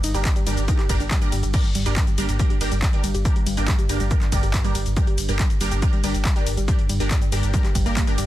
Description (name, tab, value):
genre	driving peak-time techno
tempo	140 BPM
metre	4/4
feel	straight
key	G minor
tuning	A4 = 440 Hz
part	warbly dusty pluck	riff	0.0-8.2 s	G3 to G4	-30 LUFS	equal	chorus, tube saturation, sidechain pumping, digital delay
part	saturated sub bass	bass	0.0-8.3 s	G1	-25 LUFS	equal	sidechain pumping, low-pass filter
part	deep dark ambient pad	drone	0.0-8.3 s	G2	-30 LUFS	equal	chorus, built-in reverb, sidechain pumping
part	techno drum kit	drums	0.0-8.3 s	crash cymbal, handclaps, hi-hat, ride cymbal, shaker	-29 LUFS	left 1 dB	overdrive, sidechain pumping on hats, sidechain pumping on perc, sidechain pumping on cymbals
part	rave stab	stabs	0.1-8.2 s	D4 to Bb4	-29 LUFS	right 3 dB	chorus, built-in reverb, phaser, sidechain pumping, digital delay
part	electronic kick drum	drums	0.3-8.1 s	none	-21 LUFS	equal	overdrive
room	little or no reverb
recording	dense, heavily limited modern master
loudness	-19 LUFS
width	side -14 dB against mid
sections	0.0-8.3 A section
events	none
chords	0.0 Gm